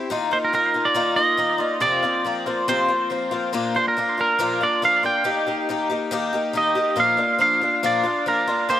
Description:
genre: rock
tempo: 140 BPM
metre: 4/4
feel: straight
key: unclear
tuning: A4 = 440 Hz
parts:
  - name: picked twelve-string acoustic guitar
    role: accompaniment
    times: 0.0-8.8 s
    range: F2 to G4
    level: -23 LUFS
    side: left 3 dB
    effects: none
  - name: twangy electric guitar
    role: melody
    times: 0.3-8.8 s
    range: Bb4 to G5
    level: -20 LUFS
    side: right 2 dB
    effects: vibrato effect, dub echo
room: light reverb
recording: echo-heavy mix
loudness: -18 LUFS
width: side -11 dB against mid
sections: 0.1-7.0 A section; 7.0-8.8 B section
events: none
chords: 0.1 Ebsus2; 1.8 Fsus4; 3.5 Bb; 5.2 Eb; 7.0 Bb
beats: | 0.10 0.53 0.96 1.39 | 1.81 2.24 2.67 3.10 | 3.53 3.96 4.39 4.82 | 5.25 5.68 6.11 6.54 | 6.97 7.40 7.83 8.26 | 8.69

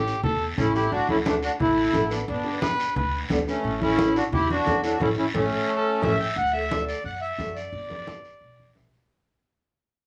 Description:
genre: latin, cumbia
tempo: 176 BPM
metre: 4/4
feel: straight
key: D major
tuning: A4 = 437 Hz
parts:
  - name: warm trumpet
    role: second line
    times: 0.0-0.5, 2.6-3.2, 5.7-6.4 s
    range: G4 to E5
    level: -29 LUFS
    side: equal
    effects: none
  - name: nylon-string guitar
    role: accompaniment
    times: 0.0-8.9 s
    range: C#4 to E5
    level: -32 LUFS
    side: equal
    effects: none
  - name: upright bass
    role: bass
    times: 0.0-9.0 s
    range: G1 to F#2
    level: -34 LUFS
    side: equal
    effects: none
  - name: guiro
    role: percussion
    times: 0.1-9.1 s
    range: none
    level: -39 LUFS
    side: equal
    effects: none
  - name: congas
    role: percussion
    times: 0.2-8.9 s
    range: none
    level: -32 LUFS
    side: equal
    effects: none
  - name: accordion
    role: melody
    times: 0.6-8.7 s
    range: G3 to G5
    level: -27 LUFS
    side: equal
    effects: none
room: wet small room reverb, RT60 0.5 s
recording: small room ambience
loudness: -24 LUFS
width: mono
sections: 0.0-6.4 A section; 6.4-9.1 B section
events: band accent 5.0-6.4; fade-out 6.4-9.1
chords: 0.0 A7; 0.9 D; 2.3 G; 3.6 A7; 6.4 D; 7.7 G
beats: 0.24 0.58 | 0.92 1.26 1.60 1.94 | 2.28 2.62 2.96 3.30 | 3.64 3.98 4.32 4.66 | 5.00 5.34 5.68 6.02 | 6.36 6.70 7.04 7.39 | 7.73 8.07 8.41 8.75

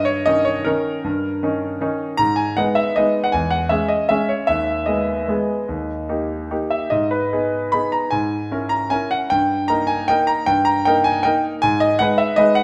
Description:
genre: classical, piano waltz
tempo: 139-167 BPM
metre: 3/4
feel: rubato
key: G# minor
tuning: A4 = 440 Hz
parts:
  - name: bright concert grand piano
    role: solo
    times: 0.0-12.6 s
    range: D#2 to B5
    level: -19 LUFS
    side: equal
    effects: none
room: moderate recital hall reverb, RT60 1.5 s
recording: none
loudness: -20 LUFS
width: mono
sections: 0.0-12.6 A section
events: none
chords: 0.0 D#7/G; 2.2 G#m; 3.3 C#m/E; 4.5 G#m/D#; 5.7 D#; 6.9 G#m; 8.1 A#m7b5/G#; 9.3 D#/G; 11.6 G#m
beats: 0.27 0.66 | 1.05 1.43 1.82 | 2.20 2.57 2.96 | 3.33 3.71 4.11 | 4.49 4.88 5.30 | 5.69 6.09 6.51 | 6.93 7.33 7.74 | 8.13 8.52 8.92 | 9.31 9.70 10.10 | 10.48 10.87 11.26 | 11.63 12.00 12.38

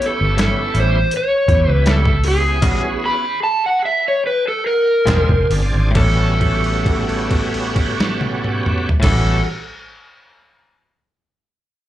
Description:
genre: straight-eighth soul blues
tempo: 66-83 BPM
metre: 4/4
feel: straight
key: A mixolydian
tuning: A4 = 440 Hz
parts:
  - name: overdriven slide guitar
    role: melody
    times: 0.0-9.4 s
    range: G#4 to B5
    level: -18 LUFS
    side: equal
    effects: slapback echo
  - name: bright tonewheel organ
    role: accompaniment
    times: 0.0-9.4 s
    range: B3 to B5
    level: -26 LUFS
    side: right 4 dB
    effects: overdrive, chorus vibrato, slow rotary speaker, slapback echo
  - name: vintage muted fingered electric bass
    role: bass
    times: 0.0-9.4 s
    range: E1 to E2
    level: -18 LUFS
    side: equal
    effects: none
  - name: boom bap sampler-style drum kit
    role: drums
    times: 0.0-9.2 s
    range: crash cymbal, hi-hat, kick drum, snare drum, toms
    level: -19 LUFS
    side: equal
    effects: overdrive
  - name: direct-recorded clean electric guitar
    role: stabs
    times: 0.4-9.5 s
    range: A2 to F#4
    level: -25 LUFS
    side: left 4 dB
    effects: slapback echo
room: light reverb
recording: live gig heard through the venue's PA, club reverb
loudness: -14 LUFS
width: side -13 dB against mid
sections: 0.0-6.0 A section; 6.0-9.6 B section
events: slowing down 0.0-6.0; tonewheel organ fill 3.4-6.0; held note 6.0-9.0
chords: 0.0 A7; 2.6 A13; 5.1 Bb9; 6.0 A13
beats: 0.38 1.12 1.86 | 2.63 3.41 4.22 5.07 | 5.95 6.85 7.76 8.66

